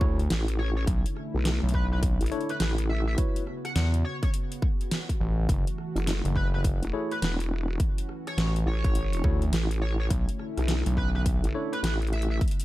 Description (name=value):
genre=glitch hop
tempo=104 BPM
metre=4/4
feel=swing 63% on 16ths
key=unclear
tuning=A4 = 440 Hz
part: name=warm analog pad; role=sustained chords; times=0.0-12.6 s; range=C#3 to F#4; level=-37 LUFS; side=equal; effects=chorus, sidechain pumping
part: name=bright tine electric piano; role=stabs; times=0.0-3.4, 6.9-11.7 s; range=D4 to C#5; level=-34 LUFS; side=left 1 dB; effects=medium stereo tremolo, vintage 12-bit sampler grit, sidechain pumping, digital delay
part: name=gritty driven synth bass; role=bass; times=0.0-11.4 s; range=F#1 to E2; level=-26 LUFS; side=equal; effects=distortion, tube saturation
part: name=electronic kick drum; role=drums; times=0.0-12.6 s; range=none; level=-27 LUFS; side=equal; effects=overdrive
part: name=dubstep drum kit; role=drums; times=0.2-12.6 s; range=hi-hat, rim click, snare drum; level=-33 LUFS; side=equal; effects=overdrive
part: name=vowel-sweep wobble bass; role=bass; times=0.3-12.4 s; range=E1 to B1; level=-27 LUFS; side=equal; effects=chorus
part: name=sync lead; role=melody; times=0.6-12.4 s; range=B4 to F#5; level=-37 LUFS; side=equal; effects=lush chorus, cassette tape, digital delay
room=little or no reverb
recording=dark, warm production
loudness=-25 LUFS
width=side -16 dB against mid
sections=0.0-12.6 A section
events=none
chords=0.0 Dmaj9; 0.9 Bm11; 3.2 A69; 5.5 F#m7; 7.8 Dmaj9; 10.1 Bm11